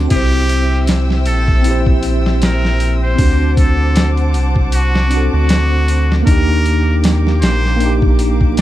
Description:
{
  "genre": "trip hop",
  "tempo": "78 BPM",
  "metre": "4/4",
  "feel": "swing 56% on 16ths",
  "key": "unclear",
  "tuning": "A4 = 441 Hz",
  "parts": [
    { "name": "mellow tine electric piano", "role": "accompaniment", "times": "0.0-8.6 s", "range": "Bb3 to C5", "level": "-19 LUFS", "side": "equal", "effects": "medium stereo tremolo, harmonic tremolo, vintage 12-bit sampler grit" },
    { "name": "muted studio violin section", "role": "sustained chords", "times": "0.0-8.6 s", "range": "Bb3 to E6", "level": "-26 LUFS", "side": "left 1 dB", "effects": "none" },
    { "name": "round analog bass", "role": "bass", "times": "0.0-8.6 s", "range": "Bb1 to Eb2", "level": "-14 LUFS", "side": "equal", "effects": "none" },
    { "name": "trumpet with straight mute", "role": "melody", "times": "0.1-8.6 s", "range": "F#4 to C5", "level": "-22 LUFS", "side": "equal", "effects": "tape echo" },
    { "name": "boom bap sampler-style drum kit", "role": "drums", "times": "0.1-8.6 s", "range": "crash cymbal, hi-hat, kick drum, snare drum", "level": "-16 LUFS", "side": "equal", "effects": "none" }
  ],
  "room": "digital ambience",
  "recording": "vinyl crackle",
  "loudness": "-11 LUFS",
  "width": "side -14 dB against mid",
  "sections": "0.1-8.6 A section",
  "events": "none",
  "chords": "0.1 C; 3.2 D7; 6.3 Ebmaj7",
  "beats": "| 0.11 0.88 1.65 2.42 | 3.19 3.96 4.73 5.50 | 6.27 7.04 7.81 8.57"
}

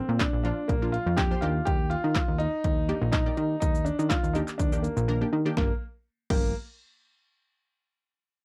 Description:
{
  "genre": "dance-pop",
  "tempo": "123 BPM",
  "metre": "4/4",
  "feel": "straight",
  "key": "G minor",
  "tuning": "A4 = 440 Hz",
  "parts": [
    { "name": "clear concert grand piano", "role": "melody", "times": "0.0-6.5 s", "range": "Bb3 to G4", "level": "-33 LUFS", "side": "equal", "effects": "slapback echo" },
    { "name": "punchy chord stab", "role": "accompaniment", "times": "0.0-6.5 s", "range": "Eb3 to D5", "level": "-36 LUFS", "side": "equal", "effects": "chorus, sidechain pumping" },
    { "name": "plucky analog bass", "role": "bass", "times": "0.1-6.5 s", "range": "G1 to Eb3", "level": "-31 LUFS", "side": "equal", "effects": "sidechain pumping" },
    { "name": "punchy analog drum machine", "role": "drums", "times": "0.2-6.4 s", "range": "crash cymbal, handclaps, hi-hat, kick drum, shaker, snare drum", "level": "-30 LUFS", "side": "equal", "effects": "none" }
  ],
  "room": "little or no reverb",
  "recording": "dry, close 1970s-style studio recording",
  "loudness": "-27 LUFS",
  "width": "mono",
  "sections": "0.0-5.6 A section; 5.6-7.5 B section",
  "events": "silent gap 5.1-5.6",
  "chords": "0.0 Bbmaj7; 1.4 Ebmaj7; 5.6 Gm7",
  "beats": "0.20 0.69 1.18 | 1.67 2.15 2.64 3.13 | 3.62 4.11 4.59 5.08 | 5.57 6.06"
}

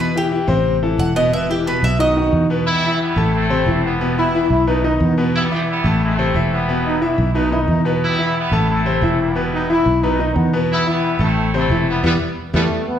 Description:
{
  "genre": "latin",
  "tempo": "179 BPM",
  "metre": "4/4",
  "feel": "straight",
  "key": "E harmonic minor",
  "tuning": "A4 = 441 Hz",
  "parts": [
    { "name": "Cuban tres", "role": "melody", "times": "0.0-2.5 s", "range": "G4 to F#5", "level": "-20 LUFS", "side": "right 2 dB", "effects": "none" },
    { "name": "bright concert grand piano", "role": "accompaniment", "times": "0.0-12.6 s", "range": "B2 to A5", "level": "-20 LUFS", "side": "left 3 dB", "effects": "none" },
    { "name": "fingered electric bass", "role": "bass", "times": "0.0-12.7 s", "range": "E1 to E2", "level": "-19 LUFS", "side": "right 1 dB", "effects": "none" },
    { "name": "bright trumpet section", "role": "melody", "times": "2.7-12.6 s", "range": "G3 to E4", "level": "-21 LUFS", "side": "right 1 dB", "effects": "none" },
    { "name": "clear trombone section", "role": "second line", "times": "4.2-13.0 s", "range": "A3 to E4", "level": "-21 LUFS", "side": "equal", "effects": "none" }
  ],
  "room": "wet large studio reverb, RT60 1.3 s",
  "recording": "heard from further back in the room",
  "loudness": "-15 LUFS",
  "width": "side -9 dB against mid",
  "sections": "0.0-2.7 A section; 2.7-13.0 B section",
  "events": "Cuban tres solo 0.0-2.7; band accent 12.0-13.0",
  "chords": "0.0 Em; 0.7 Am; 1.3 Em; 2.0 B; 2.7 Em; 3.3 Am; 4.0 Em; 4.7 B; 5.3 Em; 6.0 Am; 6.7 Em; 7.3 B; 8.0 Em; 8.7 Am; 9.4 Em; 10.0 B; 10.7 Em; 11.4 Am; 12.0 Em",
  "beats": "0.31 0.65 0.98 | 1.32 1.66 1.99 2.33 | 2.66 3.00 3.33 3.67 | 4.00 4.34 4.67 5.01 | 5.34 5.68 6.01 6.34 | 6.68 7.01 7.35 7.68 | 8.02 8.35 8.69 9.02 | 9.36 9.69 10.03 10.36 | 10.70 11.03 11.37 11.70 | 12.04 12.37 12.71"
}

